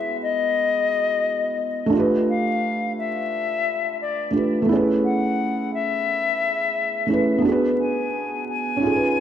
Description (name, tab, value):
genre	hip hop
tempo	87 BPM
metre	4/4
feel	swing 56% on 16ths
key	unclear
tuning	A4 = 441 Hz
part	silver concert flute	melody	0.0-9.2 s	D5 to G#5	-23 LUFS	left 5 dB	ping-pong delay
part	felt-muted upright piano	accompaniment	0.0-9.2 s	G#3 to B4	-22 LUFS	right 2 dB	cassette tape
room	wet plate reverb, RT60 3.1 s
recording	dreamy mix soaked in reverb, vinyl crackle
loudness	-20 LUFS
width	side -9 dB against mid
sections	0.0-9.2 A section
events	none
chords	0.0 Emaj7; 1.9 G9; 4.7 Amaj7; 7.4 G#m7b5